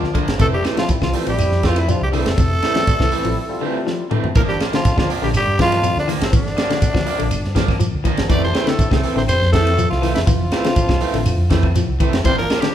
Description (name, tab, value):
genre	afrobeat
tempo	122 BPM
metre	4/4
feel	straight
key	G dorian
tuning	A4 = 440 Hz
part	barky tine electric piano	accompaniment	0.0-4.1 s	G3 to F4	-28 LUFS	left 3 dB	overdrive, phaser
part	electric guitar at the edge of break-up	arpeggios	0.0-12.7 s	C3 to F3	-25 LUFS	left 5 dB	none
part	electric guitar at the edge of break-up	stabs	0.0-12.7 s	E3 to D4	-25 LUFS	right 4 dB	none
part	hollow-body short-scale fingered electric bass	bass	0.0-12.5 s	F1 to G2	-21 LUFS	equal	none
part	tight funk drum kit	drums	0.0-12.7 s	hi-hat, kick drum, ride cymbal, snare drum, toms	-20 LUFS	equal	none
part	claves	percussion	0.2-12.6 s	none	-40 LUFS	left 5 dB	none
part	shekere	percussion	0.2-12.6 s	none	-25 LUFS	right 2 dB	none
part	raspy tenor saxophone	melody	0.4-12.7 s	C4 to D5	-22 LUFS	equal	none
part	clear trombone	second line	0.4-12.7 s	C3 to D4	-30 LUFS	right 3 dB	none
part	mellow trombone section	second line	0.4-12.7 s	C2 to A3	-30 LUFS	left 3 dB	none
room	moderate large studio reverb, RT60 1.1 s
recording	band playing live in one room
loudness	-15 LUFS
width	side -10 dB against mid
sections	0.0-4.4 A section; 4.4-12.7 A section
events	break 3.4-4.4; drum fill 3.9-4.4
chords	0.4 Fmaj7; 4.4 Gm7; 8.3 Fmaj7; 12.2 Gm7